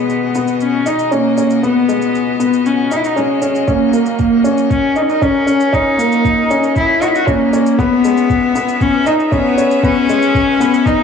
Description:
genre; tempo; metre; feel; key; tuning
piano and strings electronica; 117 BPM; 4/4; straight; G# minor; A4 = 441 Hz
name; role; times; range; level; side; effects
rich cello; melody; 0.0-11.0 s; G#3 to F#4; -14 LUFS; left 1 dB; low-pass filter, cassette tape, tape echo
bright string quartet; sustained chords; 0.0-11.0 s; B2 to E5; -26 LUFS; equal; sidechain pumping
dark upright piano; riff; 0.0-11.0 s; G#3 to D#4; -16 LUFS; left 1 dB; tape echo
warm sub bass; bass; 0.0-11.0 s; F#1 to F#2; -36 LUFS; left 3 dB; none
shaker; drums; 0.1-11.0 s; none; -35 LUFS; right 2 dB; overdrive
electronic kick drum; drums; 3.7-11.0 s; none; -20 LUFS; equal; overdrive
room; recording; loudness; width
wet spring reverb, RT60 2.0 s, small room reverb; home recording on cassette; -11 LUFS; side -6 dB against mid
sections
0.0-11.0 A section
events
build-up 0.0-11.0; filter sweep on cello 0.0-11.0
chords
0.0 G#m7; 3.7 F#6; 7.8 C#m7

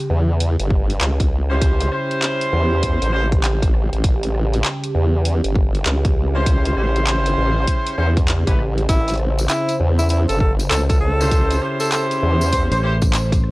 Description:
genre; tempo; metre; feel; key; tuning
glitch hop; 99 BPM; 4/4; swing 63% on 16ths; unclear; A4 = 441 Hz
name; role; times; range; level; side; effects
warm analog pad; sustained chords; 0.0-13.5 s; C#3 to B#4; -27 LUFS; equal; chorus, sidechain pumping
formant-sweep wobble bass; bass; 0.1-12.7 s; G1 to E2; -18 LUFS; equal; chorus, overdrive
pop drum kit; drums; 0.4-13.5 s; handclaps, hi-hat, rim click; -24 LUFS; equal; studio reverb
electronic kick drum; drums; 0.7-13.4 s; none; -19 LUFS; equal; studio reverb
clear horn section; stabs; 1.5-12.9 s; C#4 to B#4; -22 LUFS; equal; sidechain pumping, tape echo
clear tenor saxophone; melody; 8.9-12.8 s; E4 to B#4; -23 LUFS; equal; tape echo
tambourine; percussion; 8.9-13.4 s; none; -32 LUFS; left 2 dB; none
fingered electric bass; bass; 12.7-13.5 s; A1; -19 LUFS; equal; none
room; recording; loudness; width
small room ambience; dry, gritty hardware recording, cassette tape; -16 LUFS; side -20 dB against mid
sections
0.0-13.5 A section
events
none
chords
0.0 A7#9

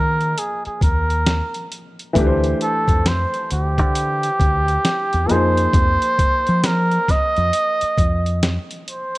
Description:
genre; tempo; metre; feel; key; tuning
R&B, neo-soul; 67 BPM; 4/4; swing 62% on 16ths; unclear; A4 = 441 Hz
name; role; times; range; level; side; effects
trumpet with cup mute; melody; 0.0-9.2 s; G4 to Eb5; -20 LUFS; right 1 dB; none
warm concert grand piano; accompaniment; 0.0-9.2 s; E3 to Eb5; -24 LUFS; left 1 dB; none
deep dub fingered electric bass; bass; 0.0-8.6 s; D2 to F3; -20 LUFS; equal; none
boom bap sampler-style drum kit; drums; 0.2-9.2 s; hi-hat, kick drum, snare drum; -20 LUFS; equal; none
room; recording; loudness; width
little or no reverb; worn, warbling old tape, cassette tape, warbly pitch drift; -16 LUFS; side -19 dB against mid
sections
0.0-9.2 A section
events
none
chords
0.0 Eb9sus4; 2.2 D9sus4; 5.3 Fm7

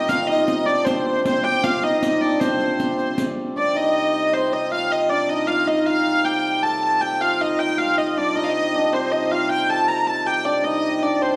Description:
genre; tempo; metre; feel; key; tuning
medieval dance; 156 BPM; 3/4; straight; C dorian; A4 = 440 Hz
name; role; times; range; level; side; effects
rich hurdy-gurdy; melody; 0.0-11.4 s; C5 to Bb5; -23 LUFS; equal; none
clear fiddle; second line; 0.0-11.4 s; C5 to A5; -30 LUFS; equal; none
hammered dulcimer; second line; 0.0-11.4 s; C4 to Bb4; -26 LUFS; equal; none
hand-pumped harmonium; drone; 0.0-11.4 s; C3 to G3; -33 LUFS; equal; none
riq; percussion; 0.1-3.4 s; none; -29 LUFS; equal; none
room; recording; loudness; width
wet recital hall reverb, RT60 1.5 s; dark, warm production; -21 LUFS; mono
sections
0.0-3.6 A section; 3.6-11.4 B section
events
none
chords
none

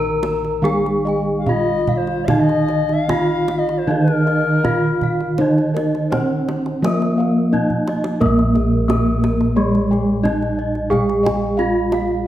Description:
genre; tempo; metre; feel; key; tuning
Javanese gamelan; 73-89 BPM; 4/4; straight; Bb slendro; A4 = 438 Hz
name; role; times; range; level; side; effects
gamelan-type bronze metallophone; melody; 0.0-12.3 s; Ab3-40c to Bb4; -20 LUFS; equal; none
gamelan-type bronze metallophone; accompaniment; 0.0-12.3 s; Eb3-20c to Bb3; -23 LUFS; right 2 dB; none
gamelan-type bossed gongs; arpeggios; 0.0-12.0 s; Ab4-40c to Bb5; -28 LUFS; left 3 dB; none
gamelan-type bronze metallophone; arpeggios; 0.0-12.2 s; Ab4-40c to Bb5; -28 LUFS; right 3 dB; none
gamelan-type bossed gongs; bass; 0.0-12.3 s; Bb1 to Bb4; -22 LUFS; equal; none
kendang; percussion; 0.2-12.1 s; none; -26 LUFS; right 2 dB; none
bright reedy bass bansuri; second line; 1.4-5.3 s; Bb4 to F5; -22 LUFS; left 6 dB; none
room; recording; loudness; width
moderate recital hall reverb, RT60 1.5 s; none; -15 LUFS; side -12 dB against mid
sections
0.0-8.2 A section; 8.2-12.3 B section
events
drum fill 7.5-8.2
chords
none

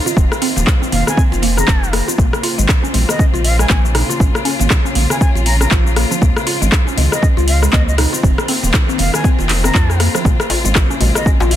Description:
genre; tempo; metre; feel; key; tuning
afro house; 119 BPM; 4/4; swing 59% on 16ths; Bb minor; A4 = 437 Hz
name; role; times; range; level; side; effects
rich chamber string section; sustained chords; 0.0-11.6 s; Db3 to F4; -23 LUFS; left 2 dB; sidechain pumping
mallet-like synth pluck; arpeggios; 0.0-11.5 s; F3 to Ab4; -22 LUFS; equal; chorus, phaser, sidechain pumping, digital delay
deep house drum kit; drums; 0.1-11.6 s; handclaps, hi-hat, rim click, shaker; -18 LUFS; left 1 dB; overdrive
congas; percussion; 0.1-11.5 s; none; -26 LUFS; right 4 dB; none
warm sub bass; bass; 0.2-11.6 s; Eb1 to F2; -16 LUFS; equal; sidechain pumping
electronic kick drum; drums; 0.2-11.4 s; none; -14 LUFS; equal; overdrive
silver concert flute; melody; 0.9-11.6 s; Eb5 to Bb5; -25 LUFS; left 1 dB; digital delay
djembe; percussion; 10.3-11.6 s; none; -22 LUFS; left 1 dB; none
room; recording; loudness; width
digital ambience; dense, heavily limited modern master; -12 LUFS; side -11 dB against mid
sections
0.0-11.6 A section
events
drum fill 9.9-10.3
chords
0.2 F7sus4; 2.2 Bbmadd9; 8.2 F7sus4; 10.3 Bbmadd9

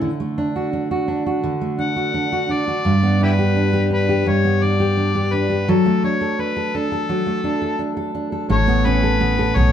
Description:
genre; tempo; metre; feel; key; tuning
acoustic pop; 85 BPM; 4/4; straight; D major; A4 = 440 Hz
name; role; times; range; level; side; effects
fingerpicked steel-string acoustic guitar; accompaniment; 0.0-9.7 s; G2 to A4; -18 LUFS; right 1 dB; none
overdriven harmonica; melody; 1.8-9.7 s; E4 to F#5; -23 LUFS; left 3 dB; none
vintage muted fingered electric bass; bass; 8.5-9.7 s; A1 to B1; -18 LUFS; left 1 dB; none
room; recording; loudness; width
moderate stone room reverb, RT60 1.0 s; band playing live in one room; -17 LUFS; side -9 dB against mid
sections
0.0-8.5 A section; 8.5-9.7 B section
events
none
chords
0.0 D; 2.9 G; 5.7 D/F#; 8.5 Aadd9

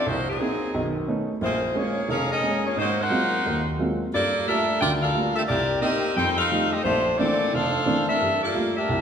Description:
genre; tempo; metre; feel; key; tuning
jazz; 177 BPM; 4/4; swing 64% on 8ths; unclear; A4 = 440 Hz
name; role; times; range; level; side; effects
clear saxophone section; melody; 0.0-9.0 s; Gb3 to G5; -23 LUFS; left 1 dB; none
warm upright piano; accompaniment; 0.1-9.0 s; F1 to F4; -25 LUFS; right 1 dB; none
room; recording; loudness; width
wet recital hall reverb, RT60 1.5 s; recorded in a church or concert hall; -21 LUFS; side -7 dB against mid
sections
0.0-9.0 A section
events
none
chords
0.1 Cm7b5; 0.7 B9; 1.4 Bbm7; 2.8 Ab13; 4.1 Gm9; 5.5 Cm7; 6.2 F9; 6.8 Bbmaj9#11; 8.2 Gm9

